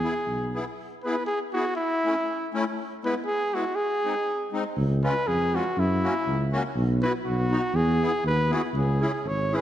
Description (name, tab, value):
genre	alpine folk, alpine dance band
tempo	120 BPM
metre	2/4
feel	swing 55% on 8ths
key	E major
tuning	A4 = 439 Hz
part	warm trumpet	melody	0.0-9.6 s	E4 to C#5	-27 LUFS	equal	none
part	musette accordion	accompaniment	0.0-9.6 s	G#3 to G#4	-30 LUFS	left 2 dB	none
part	dark tuba	bass	0.0-0.6, 4.8-9.6 s	G#1 to F#2	-25 LUFS	equal	none
room	moderate scoring stage reverb, RT60 1.5 s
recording	dark, warm production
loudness	-23 LUFS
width	side -11 dB against mid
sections	0.8-8.7 A section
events	none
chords	0.0 E; 1.8 A; 2.8 E; 3.8 G#; 4.8 C#; 5.8 F#7; 6.8 Bsus4; 7.2 B; 7.7 E; 8.7 C#m